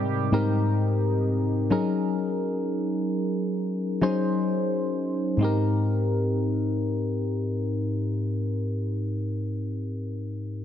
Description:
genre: R&B.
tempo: free time.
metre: none.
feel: none.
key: Ab major.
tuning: A4 = 441 Hz.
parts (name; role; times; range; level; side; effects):
mellow FM electric piano; accompaniment; 0.0-10.6 s; Ab2 to C5; -24 LUFS; left 1 dB; chorus.
warm analog pad; sustained chords; 0.0-1.7 s; C3 to Eb5; -32 LUFS; right 4 dB; chorus.
room: light reverb.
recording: dense, heavily limited modern master.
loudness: -24 LUFS.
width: side -10 dB against mid.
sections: 0.0-5.4 A section; 5.4-9.1 B section.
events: none.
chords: 0.0 Abmaj7; 1.7 Gb6; 5.4 Abmaj7.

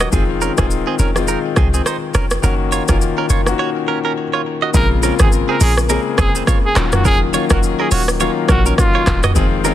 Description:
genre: afrobeats.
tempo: 104 BPM.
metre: 4/4.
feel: swing 58% on 16ths.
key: Bb minor.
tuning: A4 = 440 Hz.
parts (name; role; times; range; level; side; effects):
clear grand piano; accompaniment; 0.0-9.7 s; Db3 to Ab4; -20 LUFS; left 7 dB; none.
direct-recorded clean electric guitar; riff; 0.0-9.7 s; C4 to Eb5; -22 LUFS; right 8 dB; ping-pong delay.
short 808-style bass; bass; 0.0-9.7 s; Eb1 to C2; -17 LUFS; equal; none.
afro-pop drum kit; drums; 0.0-9.7 s; handclaps, hi-hat, kick drum, rim click, shaker, toms; -17 LUFS; equal; soft clipping on snare.
clear trumpet; melody; 4.8-9.2 s; F4 to Bb4; -21 LUFS; right 1 dB; ping-pong delay.
room: digital ambience.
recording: dense, heavily limited modern master.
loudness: -13 LUFS.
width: side -12 dB against mid.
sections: 0.0-4.7 A section; 4.7-9.7 B section.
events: break 3.6-4.7.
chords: 0.1 Fm7; 2.4 Gb6; 4.7 Bbm9; 6.8 Ebm9.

